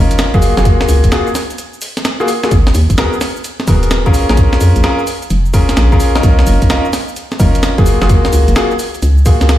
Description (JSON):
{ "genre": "UK garage, two-step garage", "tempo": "129 BPM", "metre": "4/4", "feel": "swing 66% on 16ths", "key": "unclear", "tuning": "A4 = 442 Hz", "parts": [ { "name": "bright grand piano", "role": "stabs", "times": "0.0-9.6 s", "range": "A#3 to A#4", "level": "-16 LUFS", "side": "left 1 dB", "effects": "vintage 12-bit sampler grit, ping-pong delay" }, { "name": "hollow knocking FM bass", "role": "bass", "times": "0.0-9.6 s", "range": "D#1 to E#2", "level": "-11 LUFS", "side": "equal", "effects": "tube saturation" }, { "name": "breakbeat sampler-style drum kit", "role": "drums", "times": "0.1-9.6 s", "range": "cabasa, hi-hat, snare drum", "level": "-19 LUFS", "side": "right 1 dB", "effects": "none" }, { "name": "electronic kick drum", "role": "drums", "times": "0.3-9.4 s", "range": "none", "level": "-12 LUFS", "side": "equal", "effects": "none" } ], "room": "light reverb, digital ambience", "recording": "played on a big sound system in a bare room, stone room reverb", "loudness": "-10 LUFS", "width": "side -13 dB against mid", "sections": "0.0-9.6 A section", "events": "break 1.6-2.5", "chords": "0.4 F#maj9; 2.5 G#m9; 4.1 A#m7; 6.2 Bmaj9#11; 7.9 F#maj9" }